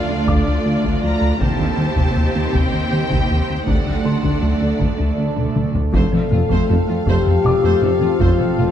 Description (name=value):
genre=cinematic, hybrid orchestral and electronic film score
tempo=53 BPM (dotted quarters)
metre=6/8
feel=straight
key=unclear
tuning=A4 = 440 Hz
part: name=warm symphonic violin section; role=melody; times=0.0-8.7 s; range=D5 to Bb5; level=-30 LUFS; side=left 3 dB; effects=none
part: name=rich symphonic violin section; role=second line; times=0.0-8.7 s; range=F4 to D5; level=-28 LUFS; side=equal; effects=none
part: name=warm symphonic viola section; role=accompaniment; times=0.0-8.7 s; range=A3 to G4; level=-27 LUFS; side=right 2 dB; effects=none
part: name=analog drone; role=sustained chords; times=0.0-8.7 s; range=F3 to F5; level=-28 LUFS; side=right 1 dB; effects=chorus
part: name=warm French horn section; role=sustained chords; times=0.0-8.7 s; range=A3 to A4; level=-24 LUFS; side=left 7 dB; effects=none
part: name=rich symphonic cello section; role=bass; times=0.0-8.7 s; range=D2 to F2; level=-24 LUFS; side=right 4 dB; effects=none
part: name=felt-muted upright piano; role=texture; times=0.0-8.7 s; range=D5 to D6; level=-33 LUFS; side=left 1 dB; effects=tape echo
part: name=thumb-piano-like synth pluck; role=arpeggios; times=0.1-8.7 s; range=C3 to F4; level=-27 LUFS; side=right 2 dB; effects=none
part: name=plucky analog bass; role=riff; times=0.1-8.7 s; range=D2 to F3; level=-20 LUFS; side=left 1 dB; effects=none
part: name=taiko ensemble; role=drums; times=0.3-8.7 s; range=none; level=-23 LUFS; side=equal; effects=none
part: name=clear trombone section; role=sustained chords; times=5.9-8.7 s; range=F3 to C4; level=-28 LUFS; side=right 1 dB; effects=none
part: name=mellow tuba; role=bass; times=5.9-8.7 s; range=F1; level=-28 LUFS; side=right 4 dB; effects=none
part: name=rich symphonic double bass section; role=bass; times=5.9-8.7 s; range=F1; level=-25 LUFS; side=right 4 dB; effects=none
room=moderate scoring stage reverb, RT60 1.8 s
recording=dark, warm production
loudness=-15 LUFS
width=side -10 dB against mid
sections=0.0-5.9 A section; 5.9-8.7 B section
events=drum fill 5.4-5.9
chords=0.0 Dm; 1.4 Cm; 3.7 D; 5.9 F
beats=0.28 | 1.41 2.54 | 3.68 4.81 | 5.94 7.07 | 8.20